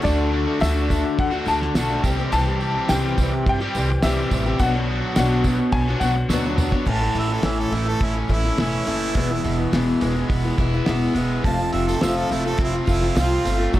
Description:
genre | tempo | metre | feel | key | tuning
folk rock and heartland rock | 105 BPM | 4/4 | straight | unclear | A4 = 441 Hz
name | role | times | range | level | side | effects
bright baby grand piano | melody | 0.0-6.5 s | D5 to A5 | -26 LUFS | left 2 dB | none
picked old ladder-braced acoustic guitar | accompaniment | 0.0-13.8 s | E2 to C#5 | -24 LUFS | left 3 dB | none
crunchy overdriven guitar | riff | 0.0-13.8 s | E2 to G4 | -26 LUFS | right 1 dB | none
upright bass | bass | 0.1-13.8 s | E1 to G2 | -24 LUFS | equal | none
cloth-damped thuddy drum kit | drums | 0.1-13.8 s | crash cymbal, hi-hat, kick drum, snare drum, toms | -25 LUFS | equal | none
tambourine | percussion | 0.1-6.7, 11.6-13.8 s | none | -39 LUFS | right 6 dB | none
clear harmonica | second line | 6.9-13.7 s | E4 to A5 | -27 LUFS | right 4 dB | none
room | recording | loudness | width
light reverb, small room reverb | none | -18 LUFS | side -14 dB against mid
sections
0.0-6.9 A section; 6.9-13.8 B section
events
drum fill 6.3-6.9; harmonica solo 6.9-13.8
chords
0.0 D; 2.0 C; 4.6 Bmadd9; 6.9 A; 9.2 E; 11.4 F

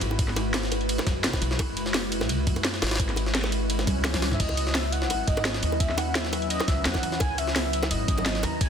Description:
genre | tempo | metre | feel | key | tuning
liquid drum and bass | 171 BPM | 4/4 | straight | C# minor | A4 = 440 Hz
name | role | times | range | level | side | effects
glassy FM pad | sustained chords | 0.0-8.7 s | F#3 to B4 | -31 LUFS | left 1 dB | ensemble chorus, built-in reverb
upright bass | bass | 0.0-8.7 s | F#1 to F#2 | -30 LUFS | equal | none
drum and bass drum kit | drums | 0.0-8.7 s | crash cymbal, hi-hat, snare drum, toms | -30 LUFS | equal | small room reverb
jungle sampler-style drum kit | drums | 0.0-8.7 s | hi-hat, ride cymbal, snare drum | -31 LUFS | right 1 dB | high-pass filter on cymbals, small room reverb, high-pass filter on snare, high-pass filter on hats
bongos and congas | percussion | 0.1-8.5 s | none | -35 LUFS | right 1 dB | none
electronic kick drum | drums | 0.2-8.7 s | none | -27 LUFS | equal | small room reverb
swell | sound effects | 3.8-4.4 s | none | -36 LUFS | left 1 dB | none
warm velvety synth lead | melody | 4.3-8.7 s | D#5 to A#5 | -30 LUFS | equal | chorus, dub echo
room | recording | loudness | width
light reverb | dense, heavily limited modern master | -23 LUFS | side -7 dB against mid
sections
0.0-8.7 A section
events
swell 3.8-4.4; drum fill 4.0-4.4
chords
0.0 F#9sus4; 4.4 C#m11

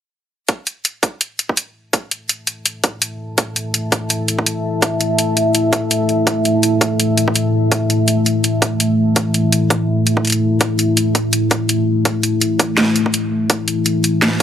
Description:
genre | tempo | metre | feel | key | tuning
half-time drum and bass | 166 BPM | 4/4 | swing 57% on 16ths, half-time | unclear | A4 = 440 Hz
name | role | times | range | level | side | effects
deep dark ambient pad | sustained chords | 3.1-14.4 s | A3 to B5 | -16 LUFS | left 1 dB | chorus, built-in reverb, sidechain pumping
drum and bass drum kit | drums | 0.5-14.4 s | hi-hat, snare drum | -17 LUFS | equal | overdrive, small room ambience
electronic kick drum | drums | 0.5-14.4 s | none | -16 LUFS | right 1 dB | overdrive, high-pass filter on kick, small room ambience
room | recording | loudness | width
moderate lush hall reverb, RT60 2.1 s | none | -15 LUFS | side -9 dB against mid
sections
0.5-14.4 A section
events
filter sweep on ambient pad 0.5-14.4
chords
0.5 A5

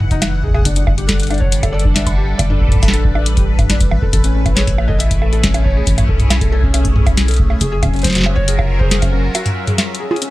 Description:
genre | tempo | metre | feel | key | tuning
IDM | 138 BPM | 4/4 | straight | unclear | A4 = 440 Hz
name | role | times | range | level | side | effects
phased analog pad | sustained chords | 0.0-10.3 s | E3 to G#5 | -24 LUFS | equal | phaser, chorus, vintage 12-bit sampler grit, sidechain pumping
rubbery square bass | bass | 0.0-9.3 s | E1 to B1 | -16 LUFS | equal | none
booming analog drum machine | drums | 0.0-10.3 s | bongos, hi-hat, snare drum, toms | -18 LUFS | equal | none
felt-muted upright piano | arpeggios | 0.1-10.3 s | C#4 to A4 | -25 LUFS | left 3 dB | dub echo
electronic kick drum | drums | 0.1-9.1 s | none | -17 LUFS | equal | none
felt-muted upright piano | melody | 1.1-10.3 s | A4 to E5 | -27 LUFS | right 1 dB | dub echo
bubbling stepped-filter texture | texture | 5.0-10.3 s | C#4 to E5 | -33 LUFS | left 2 dB | chorus, built-in reverb, sidechain pumping
room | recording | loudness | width
little or no reverb | none | -12 LUFS | side -17 dB against mid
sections
0.0-10.3 A section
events
break 9.3-10.3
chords
0.0 Emaj9; 0.7 Gmaj9; 3.9 Amaj9; 7.6 F#maj9

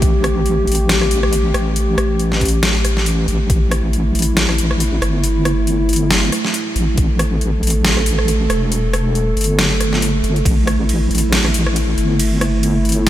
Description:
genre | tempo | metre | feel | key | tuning
deep dubstep | 138 BPM | 4/4 | swing 56% on 16ths, half-time | unclear | A4 = 439 Hz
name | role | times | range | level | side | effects
dark analog pad | sustained chords | 0.0-13.1 s | A3 to A4 | -20 LUFS | right 1 dB | chorus
deep soft wobble bass | bass | 0.0-13.1 s | E1 to A1 | -17 LUFS | equal | chorus
dubstep drum kit | drums | 0.0-13.1 s | hi-hat, ride cymbal, rim click, snare drum | -20 LUFS | left 1 dB | overdrive
electronic kick drum | drums | 0.0-3.6, 7.0-7.1, 10.5-10.6 s | none | -16 LUFS | equal | overdrive
room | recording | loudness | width
moderate huge ambient reverb, RT60 7.0 s | dreamy mix soaked in reverb | -14 LUFS | side -13 dB against mid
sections
0.0-13.1 A section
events
none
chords
0.0 A5

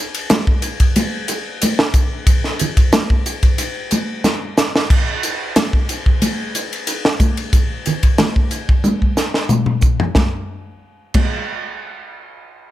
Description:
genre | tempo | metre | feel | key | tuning
jazz | 91 BPM | 4/4 | swing 53% on 16ths | none | none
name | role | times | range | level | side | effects
crisp fusion drum kit | drums | 0.1-11.3 s | crash cymbal, hi-hat, kick drum, ride cymbal, snare drum, toms | -15 LUFS | equal | none
congas | percussion | 0.3-11.3 s | none | -21 LUFS | equal | none
room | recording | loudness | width
light reverb | none | -15 LUFS | side -14 dB against mid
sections
0.0-4.9 A section; 4.9-10.2 B section; 10.2-12.7 C section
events
drum fill 4.2-4.9, 8.9-10.2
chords
none

